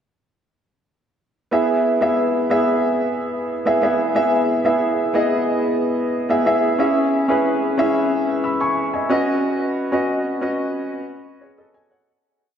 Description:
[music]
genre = pop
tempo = 91 BPM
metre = 4/4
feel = straight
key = E major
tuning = A4 = 440 Hz
[part]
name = warm baby grand piano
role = solo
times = 1.5-12.2 s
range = B3 to E6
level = -17 LUFS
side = equal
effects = lush chorus, diffuse ambient delay
[sound]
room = wet lush hall reverb, RT60 2.8 s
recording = dreamy mix soaked in reverb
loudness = -17 LUFS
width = side -8 dB against mid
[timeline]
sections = 1.5-12.1 verse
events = fade-out 9.4-12.1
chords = 1.5 E; 6.8 C#m; 9.1 Badd9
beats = | 1.52 2.18 2.84 3.50 | 4.16 4.82 5.47 6.13 | 6.79 7.45 8.11 8.77 | 9.43 10.09 10.75 11.41

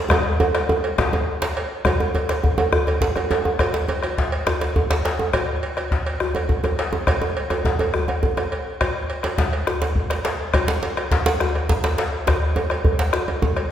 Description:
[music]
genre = west african traditional, West African drum ensemble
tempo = 138 BPM (dotted quarters)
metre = 12/8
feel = straight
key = none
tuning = none
[part]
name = bombo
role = percussion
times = 0.1-13.7 s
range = none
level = -23 LUFS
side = left 1 dB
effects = none
[part]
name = cowbell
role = percussion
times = 0.1-13.7 s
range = none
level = -29 LUFS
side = right 2 dB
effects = none
[part]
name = djembe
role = percussion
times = 0.1-13.7 s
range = none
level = -27 LUFS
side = left 2 dB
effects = none
[part]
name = djembe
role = percussion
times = 0.1-13.6 s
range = none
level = -23 LUFS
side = right 2 dB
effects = none
[sound]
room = wet scoring stage reverb, RT60 1.6 s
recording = recorded in a church or concert hall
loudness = -19 LUFS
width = side -10 dB against mid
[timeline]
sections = 0.0-1.9 A section; 1.9-13.7 A section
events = drum fill 0.1-1.9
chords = none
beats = | 0.11 0.55 0.98 1.42 | 1.85 2.29 2.73 3.16 | 3.60 4.03 4.47 4.90 | 5.34 5.77 6.21 6.64 | 7.08 7.51 7.94 8.38 | 8.81 9.24 9.68 10.11 | 10.54 10.97 11.41 11.84 | 12.27 12.70 13.13 13.56

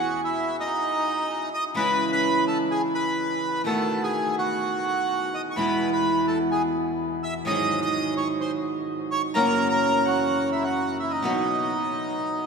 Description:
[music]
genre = tango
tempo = 127 BPM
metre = 4/4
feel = rubato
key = unclear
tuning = A4 = 440 Hz
[part]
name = bandoneon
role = melody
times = 0.0-12.5 s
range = D#4 to E6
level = -25 LUFS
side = right 1 dB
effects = none
[part]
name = nylon-string guitar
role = accompaniment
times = 0.0-12.5 s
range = E2 to G#4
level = -26 LUFS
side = right 1 dB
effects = none
[sound]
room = wet cathedral reverb, RT60 6.2 s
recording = recorded in a church or concert hall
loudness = -22 LUFS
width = side -5 dB against mid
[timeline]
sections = 0.0-12.5 A section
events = none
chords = 0.0 B; 1.8 C#m; 3.7 B7; 5.6 E; 7.5 G#7; 9.3 F#7; 11.2 B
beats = 0.34 0.82 1.29 | 1.76 2.23 2.70 3.18 | 3.66 4.13 4.61 5.09 | 5.56 6.04 6.52 6.99 | 7.46 7.93 8.40 8.87 | 9.34 9.81 10.29 10.76 | 11.24 11.71 12.19

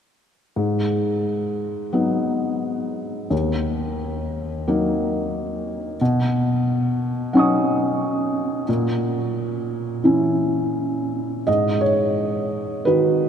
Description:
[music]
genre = neoclassical minimalist piano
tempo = 88 BPM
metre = 4/4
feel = rubato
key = G# minor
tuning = A4 = 441 Hz
[part]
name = felt-muted upright piano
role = solo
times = 0.6-13.3 s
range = D#2 to D#6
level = -19 LUFS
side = equal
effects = none
[sound]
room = wet cathedral reverb, RT60 5.8 s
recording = recorded in a church or concert hall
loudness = -20 LUFS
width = side -8 dB against mid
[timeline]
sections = 0.6-11.5 A section; 11.5-13.3 B section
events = none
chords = 0.6 G#m7; 3.3 D#m; 6.0 Badd9; 8.7 A#dim; 11.5 G#m7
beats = | 0.56 1.26 1.94 2.63 | 3.31 3.99 4.67 5.34 | 6.00 6.66 7.33 8.00 | 8.67 9.36 10.04 10.74 | 11.47 12.17 12.86

